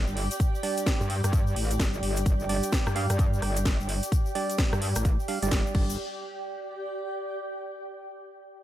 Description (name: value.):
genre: bass house.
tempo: 129 BPM.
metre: 4/4.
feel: swing 62% on 16ths.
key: unclear.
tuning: A4 = 437 Hz.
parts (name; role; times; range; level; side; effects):
metallic wobble bass; bass; 0.0-6.0 s; G1 to G2; -28 LUFS; equal; chorus, sidechain pumping.
granular cloud pad; texture; 0.0-7.8 s; G4 to G5; -35 LUFS; right 1 dB; built-in reverb, sidechain pumping.
egg shaker; percussion; 0.1-6.0 s; none; -39 LUFS; left 6 dB; none.
house drum kit; drums; 0.2-5.9 s; crash cymbal, hi-hat, rim click, snare drum; -32 LUFS; equal; none.
electronic kick drum; drums; 0.4-5.9 s; none; -25 LUFS; equal; none.
percussive organ stab; stabs; 0.6-5.9 s; G3 to F5; -34 LUFS; right 5 dB; chorus, sidechain pumping, tape echo.
room: light reverb, small room reverb.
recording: none.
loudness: -25 LUFS.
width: side -13 dB against mid.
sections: 0.0-6.0 A section; 6.0-7.8 B section.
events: filter sweep on synth stab 0.0-6.0.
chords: 0.0 G5.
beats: | 0.40 0.86 1.33 1.79 | 2.26 2.72 3.19 3.65 | 4.12 4.58 5.05 5.51 | 5.98 6.45 6.91 7.38.